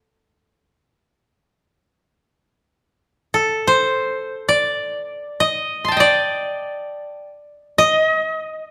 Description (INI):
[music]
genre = japanese traditional, Japanese chamber music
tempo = free time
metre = none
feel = none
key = unclear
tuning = A4 = 440 Hz
[part]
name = koto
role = solo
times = 0.0-8.7 s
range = A4 to C6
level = -19 LUFS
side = equal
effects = none
[sound]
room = moderate recital hall reverb, RT60 1.4 s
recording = none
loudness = -19 LUFS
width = mono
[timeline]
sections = 0.0-8.7 A section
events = none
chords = none